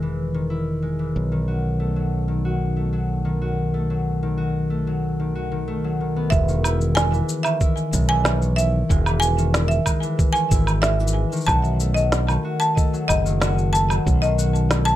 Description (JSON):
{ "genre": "folktronica", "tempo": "93 BPM", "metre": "4/4", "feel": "straight", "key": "E major", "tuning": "A4 = 440 Hz", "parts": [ { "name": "concert harp", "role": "arpeggios", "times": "0.0-15.0 s", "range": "D#3 to F#4", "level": "-24 LUFS", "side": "left 2 dB", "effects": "ping-pong delay" }, { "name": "modern bright fingered electric bass", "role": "bass", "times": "0.0-14.9 s", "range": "E1 to B1", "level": "-22 LUFS", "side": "right 1 dB", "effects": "none" }, { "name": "marimba with hard mallets", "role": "second line", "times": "6.3-15.0 s", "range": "D#5 to A5", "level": "-24 LUFS", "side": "right 1 dB", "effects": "tape echo, plate reverb" }, { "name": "electronic cabasa, woodblock and snare drum", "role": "drums", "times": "6.3-15.0 s", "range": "none", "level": "-26 LUFS", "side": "right 1 dB", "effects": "none" }, { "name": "electronic kick drum", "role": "drums", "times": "6.3-14.2 s", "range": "none", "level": "-21 LUFS", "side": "right 1 dB", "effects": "none" } ], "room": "light reverb", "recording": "dark, warm production", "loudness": "-19 LUFS", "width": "side -13 dB against mid", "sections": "0.0-6.3 A section; 6.3-15.0 B section", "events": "filter sweep on harp 0.0-6.3", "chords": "0.0 Emaj7; 1.2 B7; 6.3 Emaj7; 11.5 B7" }